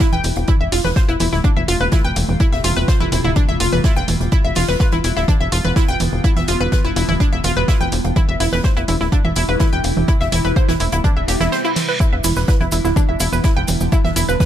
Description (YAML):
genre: melodic techno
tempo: 125 BPM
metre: 4/4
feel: straight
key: unclear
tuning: A4 = 440 Hz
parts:
  - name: evolving wavetable pad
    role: sustained chords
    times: 0.0-14.5 s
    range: C3 to F4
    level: -25 LUFS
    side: equal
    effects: chorus, built-in reverb, phaser, sidechain pumping
  - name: analog pluck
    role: arpeggios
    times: 0.0-14.5 s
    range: D4 to G5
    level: -21 LUFS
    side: equal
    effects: chorus, sidechain pumping, digital delay
  - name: compact cocktail drum kit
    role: drums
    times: 0.0-14.5 s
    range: hi-hat, snare drum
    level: -31 LUFS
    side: right 3 dB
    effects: sidechain pumping on hats, high-pass filter on hats, high-pass filter on snare, high-pass filter on room
  - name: electronic kick drum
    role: drums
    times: 0.0-14.5 s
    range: none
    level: -15 LUFS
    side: equal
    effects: none
  - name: electronic woodblock, congas and hi-hat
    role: drums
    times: 0.0-14.5 s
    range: none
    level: -24 LUFS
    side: right 3 dB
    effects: none
  - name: tight sequencer bass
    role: bass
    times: 0.1-14.4 s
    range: D1 to E1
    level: -20 LUFS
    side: equal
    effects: sidechain pumping
  - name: reverse cymbal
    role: sound effects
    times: 11.3-12.0 s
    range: none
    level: -28 LUFS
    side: right 2 dB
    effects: none
  - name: maracas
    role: percussion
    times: 12.0-14.5 s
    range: none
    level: -28 LUFS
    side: right 4 dB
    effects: none
room: little or no reverb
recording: none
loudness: -14 LUFS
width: side -11 dB against mid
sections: 0.0-14.5 A section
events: reverse cymbal 11.3-12.0; kick drops out 11.5-12.0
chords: 0.5 Fadd9; 4.3 G7; 8.2 Am7; 12.0 Em7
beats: 0.00 | 0.48 0.96 1.44 1.92 | 2.40 2.88 3.36 3.84 | 4.32 4.80 5.28 5.76 | 6.24 6.72 7.20 7.68 | 8.16 8.64 9.12 9.60 | 10.08 10.56 11.04 11.52 | 12.00 12.48 12.96 13.44 | 13.92 14.40